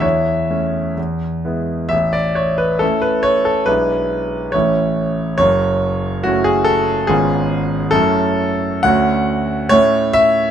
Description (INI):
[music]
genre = classical, romantic character piece for solo piano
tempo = 62-73 BPM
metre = 2/4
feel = rubato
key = A major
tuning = A4 = 440 Hz
[part]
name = clear concert grand piano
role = solo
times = 0.0-10.5 s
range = F#1 to F#5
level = -14 LUFS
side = equal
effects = none
[sound]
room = light reverb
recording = close, detailed microphones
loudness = -14 LUFS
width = side -9 dB against mid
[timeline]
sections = 0.0-1.9 A section; 1.9-10.5 B section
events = none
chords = 0.0 A/E; 1.0 E; 1.9 A; 3.7 E7/B; 4.5 A; 5.4 F#m7; 7.1 C#7/G#; 7.9 F#m7; 8.9 Dmaj7; 9.7 A